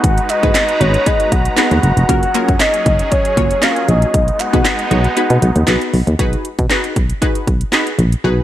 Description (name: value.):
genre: dance-pop.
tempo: 117 BPM.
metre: 4/4.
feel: straight.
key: unclear.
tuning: A4 = 440 Hz.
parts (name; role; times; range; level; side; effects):
soft octave-layered synth lead; melody; 0.0-5.9 s; C#5 to F#5; -18 LUFS; left 1 dB; chorus, tremolo, ping-pong delay.
punchy chord stab; accompaniment; 0.0-8.4 s; A#3 to C#5; -20 LUFS; left 1 dB; chorus, sidechain pumping.
filtered supersaw swell; sustained chords; 0.0-6.2 s; F#3 to A#5; -22 LUFS; right 2 dB; sidechain pumping.
solid FM bass; bass; 0.0-8.4 s; E#1 to B2; -15 LUFS; equal; sidechain pumping.
house drum kit; drums; 0.0-8.2 s; handclaps, hi-hat, kick drum, snare drum; -17 LUFS; equal; none.
group handclap; percussion; 0.3-5.8 s; none; -28 LUFS; right 7 dB; none.
room: light reverb, digital ambience.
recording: none.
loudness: -12 LUFS.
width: side -12 dB against mid.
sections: 0.0-6.2 A section; 6.2-8.4 B section.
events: kick muted 5.2-6.2, 8.2.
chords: 0.0 G#m7; 2.1 F#maj7; 4.1 B6.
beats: | 0.04 0.55 1.06 1.58 | 2.09 2.60 3.12 3.63 | 4.14 4.65 5.17 5.68 | 6.19 6.71 7.22 7.73 | 8.24.